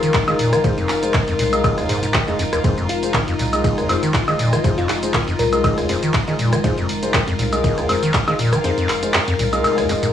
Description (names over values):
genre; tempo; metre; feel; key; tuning
acid house; 120 BPM; 4/4; swing 54% on 16ths; F minor pentatonic; A4 = 440 Hz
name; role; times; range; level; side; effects
warbly tape-like pad; sustained chords; 0.0-10.1 s; Ab3 to Bb4; -23 LUFS; left 3 dB; chorus, built-in reverb, vintage 12-bit sampler grit, sidechain pumping, cassette tape
acid bass, square; riff; 0.0-10.1 s; F1 to F3; -22 LUFS; equal; cassette tape, tape echo
saturated sub bass; bass; 0.0-10.1 s; F1 to C2; -28 LUFS; equal; sidechain pumping
punchy analog drum machine; drums; 0.0-10.1 s; handclaps, hi-hat, ride cymbal, rim click, shaker, woodblock; -22 LUFS; equal; cassette tape
bright chamber string section; texture; 0.0-10.1 s; F4 to F5; -29 LUFS; equal; sidechain pumping, cassette tape
electronic kick drum; drums; 0.1-8.2 s; none; -22 LUFS; equal; cassette tape
dark baby grand piano; stabs; 0.3-10.1 s; Ab3 to Eb5; -25 LUFS; equal; cassette tape, tape echo
bell-like FM electric piano; melody; 2.9-5.6 s; F4 to Bb4; -26 LUFS; left 4 dB; chorus, phaser, cassette tape, tape echo
room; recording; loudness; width
moderate studio reverb, RT60 0.5 s; home recording on cassette, studio ambience; -16 LUFS; side -10 dB against mid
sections
0.0-10.1 A section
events
kick drops out 8.6-10.1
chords
0.0 Fm7